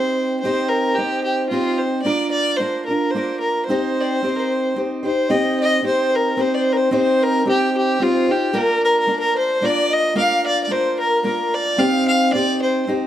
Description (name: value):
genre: celtic folk, Celtic waltz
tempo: 111 BPM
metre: 3/4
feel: swing 53% on 8ths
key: C minor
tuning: A4 = 440 Hz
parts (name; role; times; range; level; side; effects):
- warm fiddle; melody; 0.0-12.9 s; F4 to F5; -19 LUFS; equal; plate reverb
- fingerpicked steel-string acoustic guitar; accompaniment; 0.0-13.1 s; Bb3 to C5; -20 LUFS; equal; none
- baroque flute; second line; 5.0-12.9 s; F4 to F5; -25 LUFS; left 6 dB; none
room: light reverb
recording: none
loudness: -16 LUFS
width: side -11 dB against mid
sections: 0.0-5.3 A section; 5.3-13.1 A section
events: none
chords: 0.0 Cm; 2.0 Bb; 3.7 Cm; 8.5 Bb; 11.8 Cm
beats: | 0.42 0.96 1.51 | 2.05 2.59 3.13 | 3.67 4.21 4.76 | 5.30 5.84 6.38 | 6.92 7.46 8.00 | 8.54 9.08 9.62 | 10.16 10.70 11.24 | 11.79 12.33 12.87